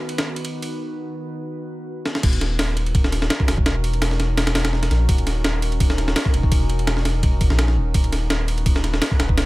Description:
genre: drum and bass, jungle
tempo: 168 BPM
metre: 4/4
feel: swing 54% on 16ths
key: Eb phrygian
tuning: A4 = 440 Hz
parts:
  - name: warbly tape-like pad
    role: sustained chords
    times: 0.0-9.5 s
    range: D#3 to B4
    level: -30 LUFS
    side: equal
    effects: chorus, built-in reverb
  - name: breakbeat sampler-style drum kit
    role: drums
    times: 0.1-9.5 s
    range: crash cymbal, kick drum, ride cymbal, snare drum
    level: -20 LUFS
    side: equal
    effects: studio reverb
  - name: saturated sub bass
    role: bass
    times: 2.2-9.5 s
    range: Eb1 to Bb1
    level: -21 LUFS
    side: equal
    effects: none
room: digital ambience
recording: none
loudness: -18 LUFS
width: side -19 dB against mid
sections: 0.0-2.2 A section; 2.2-9.5 B section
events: break 0.8-2.2; drum fill 2.1; drop 2.2-9.5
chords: 0.0 B/D#; 2.2 Ebm7; 7.9 B/D#

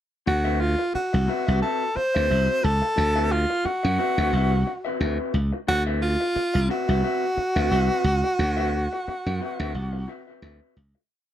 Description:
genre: funk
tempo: 89 BPM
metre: 4/4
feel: swing 56% on 16ths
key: D mixolydian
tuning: A4 = 441 Hz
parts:
  - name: breathy tenor saxophone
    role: melody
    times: 0.3-10.4 s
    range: F4 to C5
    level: -24 LUFS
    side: equal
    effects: none
  - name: electric guitar through a small old amp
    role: accompaniment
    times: 0.3-11.0 s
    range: C4 to E5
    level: -30 LUFS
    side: left 4 dB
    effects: none
  - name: slap bass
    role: bass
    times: 0.3-10.9 s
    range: C2 to F#2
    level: -23 LUFS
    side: equal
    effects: none
room: light reverb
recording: dark, warm production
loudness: -21 LUFS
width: side -11 dB against mid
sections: 0.3-11.1 groove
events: fade-out 8.4-11.1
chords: 0.3 D13

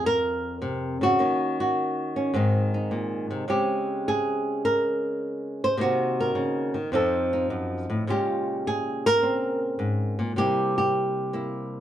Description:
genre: solo jazz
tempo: 105 BPM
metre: 4/4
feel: swing 69% on 8ths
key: F minor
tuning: A4 = 440 Hz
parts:
  - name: flamenco guitar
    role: solo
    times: 0.0-11.8 s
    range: F2 to C5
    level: -23 LUFS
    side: equal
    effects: none
room: wet studio reverb, RT60 0.5 s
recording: band playing live in one room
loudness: -23 LUFS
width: side -11 dB against mid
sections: 0.0-11.8 A section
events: none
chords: 0.0 Fsus4; 1.2 Ebm7; 2.3 Ab9; 3.5 Db5; 5.8 Cm7b5; 6.9 F7b9; 8.1 Bbm9; 10.4 C7

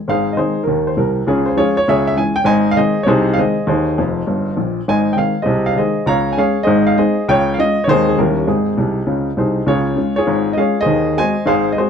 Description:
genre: jazz, stride piano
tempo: 200 BPM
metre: 4/4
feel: swing 64% on 8ths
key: Ab major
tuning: A4 = 440 Hz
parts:
  - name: warm upright piano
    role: solo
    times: 0.1-11.9 s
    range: F1 to Bb5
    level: -14 LUFS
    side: equal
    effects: none
room: light reverb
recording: close, detailed microphones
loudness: -14 LUFS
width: side -7 dB against mid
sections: 0.1-9.7 A section; 9.7-11.9 B section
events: upright piano fill 4.0-4.9, 8.8-9.7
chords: 0.1 Ab; 1.3 Db; 1.9 Dbm; 2.5 Ab; 3.1 Ab/C; 3.7 Ab/Eb; 4.3 Eb; 4.9 Ab; 5.5 Ab/C; 6.1 Db; 6.7 Ab; 7.3 Db; 7.9 Ab/Eb; 8.2 Eb7b9; 8.5 Ab; 9.7 Db; 10.9 Ab7/Eb

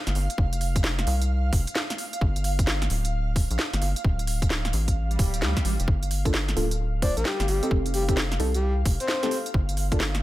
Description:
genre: UK garage, two-step garage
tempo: 131 BPM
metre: 4/4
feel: swing 64% on 16ths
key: G minor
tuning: A4 = 440 Hz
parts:
  - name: ethereal airy pad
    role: sustained chords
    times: 0.0-10.2 s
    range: F5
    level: -36 LUFS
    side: right 2 dB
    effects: ensemble chorus, built-in reverb, sidechain pumping
  - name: rubbery square bass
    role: bass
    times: 0.1-10.2 s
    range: D1 to D2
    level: -26 LUFS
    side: equal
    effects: none
  - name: garage drum kit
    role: drums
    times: 0.1-10.2 s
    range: hi-hat, snare drum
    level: -29 LUFS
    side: equal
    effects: none
  - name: electronic kick drum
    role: drums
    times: 0.4-10.0 s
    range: none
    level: -24 LUFS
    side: equal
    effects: none
  - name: swell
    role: sound effects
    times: 5.1-5.9 s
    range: none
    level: -34 LUFS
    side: right 4 dB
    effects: none
  - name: deep mellow chord stab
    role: stabs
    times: 6.3-10.0 s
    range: Bb3 to C5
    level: -30 LUFS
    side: equal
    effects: chorus, dub echo
  - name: breathy flute-like synth lead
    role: melody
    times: 7.0-9.4 s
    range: G4 to D5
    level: -30 LUFS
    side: left 1 dB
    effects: chorus, cassette tape, dub echo
room: little or no reverb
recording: none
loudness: -22 LUFS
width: side -16 dB against mid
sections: 0.0-10.2 A section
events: swell 5.1-5.9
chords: 0.4 F5; 2.0 G7(no3); 4.0 Dm; 5.9 Gm9; 7.7 F7; 9.3 Gm9

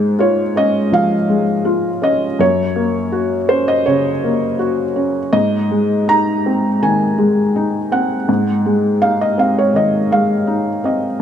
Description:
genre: classical, contemporary piece for solo felt piano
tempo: 82 BPM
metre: 4/4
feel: rubato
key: Ab mixolydian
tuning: A4 = 440 Hz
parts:
  - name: felt-muted upright piano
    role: solo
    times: 0.0-11.2 s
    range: Gb2 to Bb5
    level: -14 LUFS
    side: equal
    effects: none
room: moderate large studio reverb, RT60 1.4 s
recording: dark, warm production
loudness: -13 LUFS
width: side -9 dB against mid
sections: 0.0-11.2 A section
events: none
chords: 0.0 Db/Ab; 2.4 Gb; 5.3 Ab

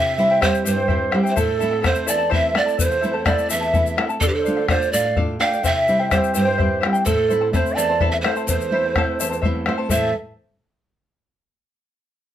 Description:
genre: andean folk, Andean ensemble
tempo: 84 BPM (dotted quarters)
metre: 6/8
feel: straight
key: A minor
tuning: A4 = 441 Hz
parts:
  - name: breathy mellow pan flute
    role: melody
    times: 0.0-10.1 s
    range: G4 to F5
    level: -21 LUFS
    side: right 4 dB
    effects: none
  - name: mellow hollow large quena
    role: second line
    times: 0.0-10.1 s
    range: A4 to A5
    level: -25 LUFS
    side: equal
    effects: none
  - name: charango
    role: accompaniment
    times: 0.0-10.1 s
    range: E4 to A5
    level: -26 LUFS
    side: left 5 dB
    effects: none
  - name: nylon-string guitar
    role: accompaniment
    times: 0.0-10.1 s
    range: E2 to E5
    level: -24 LUFS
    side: right 2 dB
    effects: none
  - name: egg shaker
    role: percussion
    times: 0.2-10.1 s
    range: none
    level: -30 LUFS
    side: left 7 dB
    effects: none
  - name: bombo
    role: percussion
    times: 0.3-10.1 s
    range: none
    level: -23 LUFS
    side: left 3 dB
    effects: none
room: moderate small room reverb, RT60 0.6 s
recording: none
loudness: -17 LUFS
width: side -11 dB against mid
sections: 0.0-9.9 A section; 9.9-11.3 B section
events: nylon-string guitar fill 9.2-9.9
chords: 0.0 C; 1.4 Am; 4.2 Dm; 5.6 C; 7.1 Am

